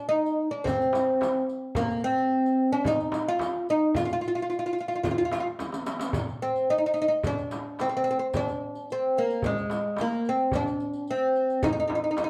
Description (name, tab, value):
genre	Turkish makam ensemble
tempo	109 BPM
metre	4/4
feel	straight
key	F makam hicaz, C makam ussak from 6.1 s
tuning	A4 = 440 Hz
part	oud	melody	0.0-12.3 s	Ab3 to F4	-27 LUFS	equal	none
part	darbuka	percussion	0.1-12.3 s	none	-37 LUFS	equal	none
part	riq	percussion	0.3-12.3 s	none	-43 LUFS	equal	none
part	frame drum	percussion	0.7-12.3 s	none	-38 LUFS	equal	none
room	moderate studio reverb, RT60 0.8 s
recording	band playing live in one room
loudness	-27 LUFS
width	mono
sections	0.0-6.1 A section; 6.1-12.3 B section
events	drum fill 5.6-6.1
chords	none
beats	0.11 0.66 1.21 | 1.76 2.31 2.86 3.40 | 3.95 4.50 5.05 5.60 | 6.14 6.69 7.24 7.79 | 8.34 8.89 9.44 9.98 | 10.53 11.08 11.63 12.18